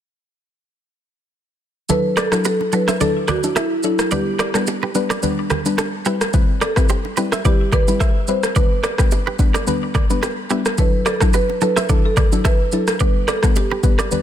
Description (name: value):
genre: afrobeats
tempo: 108 BPM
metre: 4/4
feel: swing 55% on 16ths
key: G major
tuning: A4 = 440 Hz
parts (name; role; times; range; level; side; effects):
- marimba with medium mallets; melody; 1.9-14.2 s; E4 to C5; -23 LUFS; right 2 dB; ping-pong delay
- soft round pluck; accompaniment; 1.9-14.2 s; F#3 to B4; -22 LUFS; left 3 dB; chorus
- deep house drum kit; drums; 1.9-14.2 s; kick drum, rim click, shaker; -18 LUFS; equal; overdrive
- congas and bongos; percussion; 1.9-14.2 s; none; -26 LUFS; right 8 dB; none
- clean electric guitar; riff; 2.2-14.1 s; D4 to E5; -26 LUFS; right 6 dB; ping-pong delay
room: little or no reverb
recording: dense, heavily limited modern master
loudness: -15 LUFS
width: side -10 dB against mid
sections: 1.9-14.2 A section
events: none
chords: 1.9 Dadd9; 4.1 G; 6.1 Cmaj7; 8.6 G; 10.8 Dadd9; 13.0 G